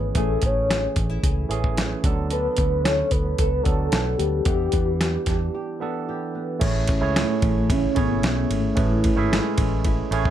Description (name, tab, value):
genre	indie pop, bedroom pop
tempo	112 BPM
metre	4/4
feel	straight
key	A major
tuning	A4 = 440 Hz
part	soft octave-layered synth lead	melody	0.0-9.6 s	A3 to C#5	-26 LUFS	left 1 dB	tremolo, wide subtle chorus, plate reverb, tape echo
part	barky tine electric piano	accompaniment	0.0-10.3 s	E3 to E5	-28 LUFS	right 6 dB	overdrive, cassette tape, plate reverb
part	flamenco guitar	accompaniment	0.0-10.3 s	A2 to A4	-30 LUFS	left 2 dB	wide subtle chorus, warbly pitch drift, plate reverb
part	vintage muted fingered electric bass	bass	0.0-10.3 s	G#1 to E2	-25 LUFS	equal	none
part	dusty soul sampler-style drum kit	drums	0.1-10.3 s	crash cymbal, hi-hat, kick drum, ride cymbal, snare drum	-24 LUFS	equal	none
room	light reverb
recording	none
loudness	-20 LUFS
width	side -11 dB against mid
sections	0.0-6.6 A section; 6.6-10.3 B section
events	break 5.5-6.6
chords	0.0 Amaj7; 2.0 D6; 4.5 Em7; 6.6 Amaj7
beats	| 0.15 0.69 1.23 1.77 | 2.31 2.85 3.39 3.93 | 4.46 5.00 5.54 6.08 | 6.62 7.16 7.69 8.23 | 8.77 9.30 9.84